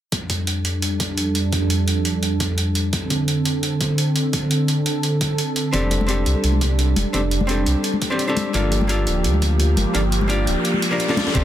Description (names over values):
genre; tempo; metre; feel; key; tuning
liquid drum and bass; 171 BPM; 4/4; swing 54% on 16ths; F major; A4 = 440 Hz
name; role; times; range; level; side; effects
warm analog pad; sustained chords; 0.1-11.4 s; F2 to A4; -22 LUFS; right 1 dB; wide subtle chorus
breakbeat sampler-style drum kit; drums; 0.1-11.4 s; hi-hat, snare drum; -26 LUFS; right 1 dB; none
electronic kick drum; drums; 0.1-11.4 s; none; -27 LUFS; equal; high-pass filter on kick, high-pass filter on room
archtop guitar, miked and amplified; accompaniment; 5.7-11.4 s; Bb3 to C5; -24 LUFS; left 1 dB; ping-pong delay
sub bass with octave; bass; 5.7-11.4 s; D1 to D2; -20 LUFS; equal; none
congas; percussion; 6.0-11.2 s; none; -28 LUFS; left 4 dB; none
riser; sound effects; 9.5-11.3 s; none; -29 LUFS; left 1 dB; none
ride cymbal; drums; 11.3-11.4 s; none; -33 LUFS; right 1 dB; none
room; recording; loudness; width
digital ambience; dense, heavily limited modern master; -18 LUFS; side -11 dB against mid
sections
0.1-11.3 A section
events
filter sweep on analog synth pad 0.1-11.3; riser 9.5-11.3; kick drops out 9.9-11.3; drum fill 11.1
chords
0.1 F69; 2.9 Amadd11/D; 5.7 F69; 8.5 Gm7